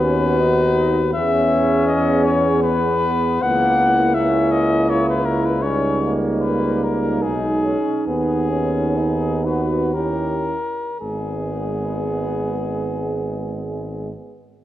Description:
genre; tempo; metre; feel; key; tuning
classical, hymn-like piece for brass band; 53-85 BPM; 3/4; rubato; G# minor; A4 = 444 Hz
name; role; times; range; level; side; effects
warm flugelhorn; melody; 0.0-14.1 s; G#4 to F#5; -22 LUFS; left 3 dB; none
dark French horn section; second line; 0.0-14.1 s; D#4 to G#4; -24 LUFS; right 2 dB; none
clear trombone section; accompaniment; 0.0-14.1 s; A#3 to G4; -25 LUFS; equal; none
warm trombone; accompaniment; 0.0-14.1 s; G3 to C#4; -26 LUFS; right 2 dB; none
warm tuba; bass; 0.0-14.1 s; G#1 to E2; -24 LUFS; equal; none
room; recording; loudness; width
moderate concert hall reverb, RT60 1.7 s; worn, warbling old tape, cassette tape, warbly pitch drift; -17 LUFS; side -13 dB against mid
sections
0.0-11.0 A section; 11.0-14.1 B section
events
slowing down 4.5-11.0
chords
0.0 B/D#; 1.2 E; 3.4 A#dim/C#; 5.6 D#7/C#; 7.2 G#m/B; 8.1 G#m/D#; 9.9 D#7b9; 11.0 G#m

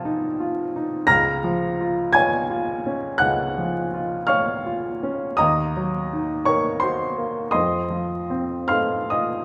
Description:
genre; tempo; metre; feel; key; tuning
classical, romantic nocturne for solo piano; 47-58 BPM (dotted quarters); 12/8; rubato; Bb minor; A4 = 440 Hz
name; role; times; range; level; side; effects
warm upright piano; solo; 0.0-9.4 s; Db2 to Bb6; -23 LUFS; equal; none
room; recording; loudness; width
moderate scoring stage reverb, RT60 1.9 s; vinyl crackle; -23 LUFS; mono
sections
0.0-9.4 A section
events
none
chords
0.0 F7/C; 1.1 Bbm/Db; 5.4 Ebm; 7.5 F7

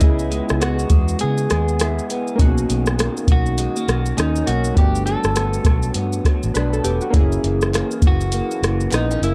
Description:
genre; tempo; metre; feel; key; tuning
indie pop, bedroom pop; 101 BPM; 4/4; swing 60% on 16ths; B major; A4 = 439 Hz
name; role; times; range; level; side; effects
electric guitar at the edge of break-up; melody; 0.0-9.3 s; D#4 to A4; -28 LUFS; equal; subtle chorus, tape echo
electric guitar through a small old amp; accompaniment; 0.0-9.3 s; F#2 to E4; -28 LUFS; equal; lush chorus, warbly pitch drift
warm analog keys; accompaniment; 0.0-9.3 s; A3 to D#5; -28 LUFS; equal; chorus
vintage muted fingered electric bass; bass; 0.0-9.3 s; E1 to C#3; -24 LUFS; equal; none
soft vintage rhythm box; drums; 0.0-9.3 s; hi-hat, kick drum, rim click, shaker; -20 LUFS; equal; overdrive
group handclap; percussion; 7.7-9.1 s; none; -38 LUFS; equal; none
room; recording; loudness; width
light reverb, digital ambience; dry, gritty hardware recording; -19 LUFS; mono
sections
0.0-9.3 A section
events
none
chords
0.0 C#m7; 2.4 Bmaj9; 4.8 Gmaj7; 7.1 F#7

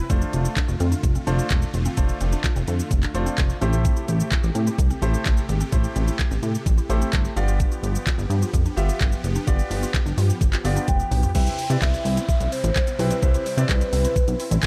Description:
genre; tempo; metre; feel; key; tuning
dance-pop; 128 BPM; 4/4; straight; C major; A4 = 444 Hz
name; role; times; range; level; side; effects
bright concert grand piano; accompaniment; 0.0-14.7 s; A3 to G5; -32 LUFS; equal; sidechain pumping
supersaw chords; sustained chords; 0.0-14.7 s; C3 to G4; -36 LUFS; equal; sidechain pumping
mallet-like synth pluck; arpeggios; 0.0-14.7 s; G3 to G4; -38 LUFS; equal; chorus, sidechain pumping, digital delay
plucky analog bass; bass; 0.1-14.6 s; E1 to C3; -25 LUFS; equal; sidechain pumping
smooth R&B drum kit; drums; 0.1-14.7 s; crash cymbal, handclaps, hi-hat, kick drum, shaker, toms; -25 LUFS; equal; none
hollow clarinet-like synth lead; melody; 10.9-14.7 s; B4 to G5; -29 LUFS; equal; chorus, digital delay
downlifter; sound effects; 11.3-14.7 s; none; -41 LUFS; equal; none
group handclap; percussion; 11.8-14.7 s; none; barely audible; none; none
room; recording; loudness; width
digital ambience; none; -22 LUFS; mono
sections
0.0-11.3 A section; 11.3-14.7 B section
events
grand piano fill 6.9-7.6, 14.4; drum fill 10.9-11.3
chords
0.1 F6; 3.6 Am7; 7.4 G7; 11.3 Cmaj7

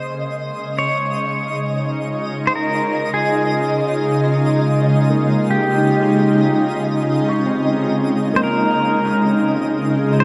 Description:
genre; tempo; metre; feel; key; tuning
ambient; 51 BPM; 4/4; straight; Db lydian; A4 = 440 Hz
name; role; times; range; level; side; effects
pedal steel guitar; melody; 0.0-10.2 s; G4 to Db5; -24 LUFS; equal; shimmer reverb, tape echo
shimmering ambient pad; sustained chords; 0.0-10.2 s; Db3 to F4; -20 LUFS; equal; chorus, built-in reverb
felt-muted upright piano; arpeggios; 0.0-10.2 s; Bb3 to F6; -28 LUFS; equal; tape echo
twinkling granular texture; texture; 0.0-10.2 s; Eb5; -29 LUFS; equal; built-in reverb, shimmer reverb
bowed-like drone; drone; 9.1-10.2 s; Db3 to Ab3; -27 LUFS; equal; none
room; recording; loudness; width
wet huge ambient reverb, RT60 8.1 s; dark, warm production; -18 LUFS; mono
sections
0.0-10.2 A section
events
fade-in on felt piano 0.0-10.2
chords
0.0 Dbmaj7

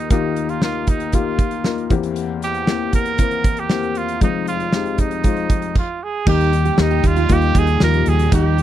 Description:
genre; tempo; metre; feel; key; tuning
piano-driven pop; 117 BPM; 4/4; straight; Eb major; A4 = 440 Hz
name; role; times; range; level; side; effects
clear trumpet; melody; 0.0-8.6 s; Eb4 to Bb4; -23 LUFS; right 6 dB; none
warm upright piano; accompaniment; 0.0-8.6 s; F1 to Bb4; -21 LUFS; left 8 dB; none
natural country drum kit; drums; 0.1-8.6 s; crash cymbal, hi-hat, kick drum, snare drum; -18 LUFS; right 1 dB; none
warm symphonic string section; sustained chords; 6.3-8.6 s; Bb2 to G4; -30 LUFS; right 5 dB; none
fingerpicked steel-string acoustic guitar; riff; 6.3-8.6 s; Eb4 to G4; -24 LUFS; right 19 dB; none
vintage muted fingered electric bass; bass; 6.3-8.6 s; Eb2; -17 LUFS; right 1 dB; none
room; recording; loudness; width
little or no reverb; dry, close 1970s-style studio recording; -16 LUFS; side -12 dB against mid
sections
0.0-6.3 A section; 6.3-8.6 B section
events
stop 5.8-6.3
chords
0.0 Ebadd9; 1.9 C7/E; 4.2 Fm7; 6.3 Eb

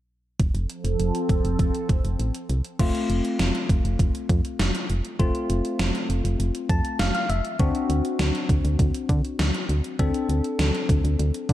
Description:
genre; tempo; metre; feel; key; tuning
synth-pop; 100 BPM; 4/4; straight; F major; A4 = 440 Hz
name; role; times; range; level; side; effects
phased analog pad; sustained chords; 0.7-2.8 s; F3 to A4; -29 LUFS; right 2 dB; phaser, chorus, low-pass filter
solid FM bass; bass; 0.4-11.5 s; F1 to D3; -24 LUFS; equal; none
gated 80s digital drum machine; drums; 0.4-11.5 s; crash cymbal, hi-hat, kick drum, snare drum; -25 LUFS; equal; gated reverb, gated reverb snare, overdrive
bell-like tine electric piano; accompaniment; 2.8-11.5 s; A3 to A5; -27 LUFS; left 3 dB; phaser
room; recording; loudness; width
light reverb, digital ambience; dark, warm production; -21 LUFS; side -14 dB against mid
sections
0.4-2.8 A section; 2.8-11.5 B section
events
filter sweep on analog synth pad 0.4-2.8; tine electric piano fill 6.4-7.6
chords
0.4 F; 7.6 D7

